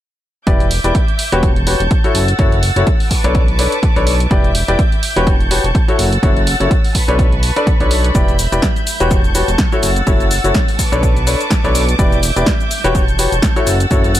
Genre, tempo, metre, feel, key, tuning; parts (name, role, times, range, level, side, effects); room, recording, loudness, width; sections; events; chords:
piano house; 125 BPM; 4/4; swing 56% on 16ths; E dorian; A4 = 440 Hz
rich symphonic violin section; sustained chords; 0.5-14.2 s; B4 to A6; -22 LUFS; right 1 dB; sidechain pumping
clear grand piano; riff; 0.5-14.1 s; D4 to D5; -18 LUFS; left 2 dB; sidechain pumping, low-pass filter, digital delay
fat analog bass; bass; 0.5-14.2 s; E1 to B1; -16 LUFS; equal; sidechain pumping
electronic kick drum; drums; 0.5-14.0 s; -15 LUFS; equal
punchy analog drum machine; drums; 0.5-14.2 s; cabasa, hi-hat, snare drum; -21 LUFS; equal
digital ambience; -12 LUFS; side -13 dB against mid
0.5-14.2 A section
0.5 Em7; 1.4 A13/E; 2.1 F#m7; 3.1 Bm9; 4.3 Em7; 5.3 A13/E; 6.0 F#m7; 6.9 Bm9; 8.1 Em7; 9.1 A13/E; 9.8 F#m7; 10.8 Bm9; 12.0 Em7; 12.9 A13/E; 13.7 F#m7